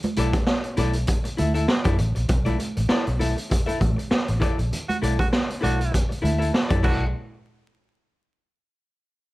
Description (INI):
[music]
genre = funk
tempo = 99 BPM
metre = 4/4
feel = swing 56% on 16ths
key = B minor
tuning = A4 = 440 Hz
[part]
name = raw garage drum kit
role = drums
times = 0.0-7.0 s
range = crash cymbal, hi-hat, kick drum, snare drum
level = -24 LUFS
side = equal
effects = none
[part]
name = congas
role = percussion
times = 0.0-7.1 s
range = none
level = -32 LUFS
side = right 3 dB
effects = none
[part]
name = archtop guitar, miked and amplified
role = accompaniment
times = 0.2-7.0 s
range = E4 to E5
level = -28 LUFS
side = left 3 dB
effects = none
[part]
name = vintage muted fingered electric bass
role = bass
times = 0.2-7.1 s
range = A1 to F#2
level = -23 LUFS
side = equal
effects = none
[part]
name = breathy tenor saxophone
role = second line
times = 4.9-7.0 s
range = F#4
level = -29 LUFS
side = right 3 dB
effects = plate reverb
[sound]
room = light reverb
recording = vinyl crackle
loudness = -20 LUFS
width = side -18 dB against mid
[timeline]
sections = 0.0-7.1 A section; 7.1-9.3 B section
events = band accent 4.7-7.1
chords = 0.0 Bm7; 7.1 N.C.